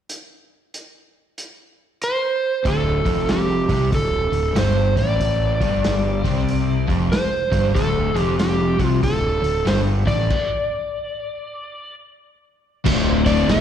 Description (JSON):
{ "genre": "blues rock power trio and southern rock", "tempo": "94 BPM", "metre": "4/4", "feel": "swing 63% on 8ths", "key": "D minor", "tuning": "A4 = 440 Hz", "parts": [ { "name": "vintage drum kit", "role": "drums", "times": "0.1-13.6 s", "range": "crash cymbal, hi-hat, kick drum, snare drum", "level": "-24 LUFS", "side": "equal", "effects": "none" }, { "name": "overdriven slide guitar", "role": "melody", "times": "2.0-13.6 s", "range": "G4 to F5", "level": "-22 LUFS", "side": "right 1 dB", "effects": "slapback echo" }, { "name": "overdriven semi-hollow guitar", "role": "riff", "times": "2.6-13.6 s", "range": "D2 to C3", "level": "-21 LUFS", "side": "left 1 dB", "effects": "none" }, { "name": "fuzz fingered electric bass", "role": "bass", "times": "2.7-13.6 s", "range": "D1 to C2", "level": "-23 LUFS", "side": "equal", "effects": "overdrive" }, { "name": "tonewheel organ", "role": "sustained chords", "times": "12.9-13.6 s", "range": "D4 to C5", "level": "-28 LUFS", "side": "right 3 dB", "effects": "slow rotary speaker, chorus vibrato" } ], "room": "small room ambience", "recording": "live gig heard through the venue's PA, recital hall reverb", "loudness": "-17 LUFS", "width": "side -9 dB against mid", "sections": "0.1-2.6 A section; 2.6-12.9 B section", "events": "stop 10.3-12.9", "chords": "0.1 N.C.; 2.6 Dm; 12.9 Dm7", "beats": "| 0.08 0.72 1.36 2.00 | 2.65 3.28 3.92 4.56 | 5.20 5.84 6.48 7.12 | 7.75 8.39 9.03 9.67 | 10.30 10.94 11.58 12.22 | 12.86 13.49" }